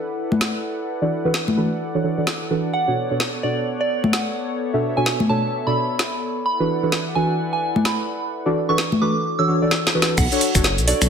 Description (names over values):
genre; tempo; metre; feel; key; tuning
UK garage, two-step garage; 129 BPM; 4/4; swing 60% on 16ths; B minor; A4 = 440 Hz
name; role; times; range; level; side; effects
warm analog pad; sustained chords; 0.0-9.7 s; B3 to F#5; -29 LUFS; equal; chorus, sidechain pumping
garage drum kit; drums; 0.3-11.1 s; congas, crash cymbal, finger snaps, hi-hat, shaker, snare drum; -21 LUFS; left 1 dB; overdrive
deep mellow chord stab; stabs; 1.0-11.1 s; B2 to E5; -22 LUFS; right 1 dB; chorus
soft synth bell; melody; 2.7-11.1 s; D5 to E6; -25 LUFS; right 2 dB; chorus, digital delay
dark detuned saw bass; bass; 10.2-11.1 s; F#1 to B1; -20 LUFS; equal; none
electronic kick drum; drums; 10.2-10.6 s; none; -22 LUFS; equal; overdrive
room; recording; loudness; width
light reverb; dense, heavily limited modern master; -18 LUFS; side -7 dB against mid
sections
0.0-10.2 A section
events
filter sweep on synth stab 0.0-10.2; drum fill 9.7-10.2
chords
0.0 E7sus4; 2.7 Bm9; 6.5 E7sus4; 10.2 Bm9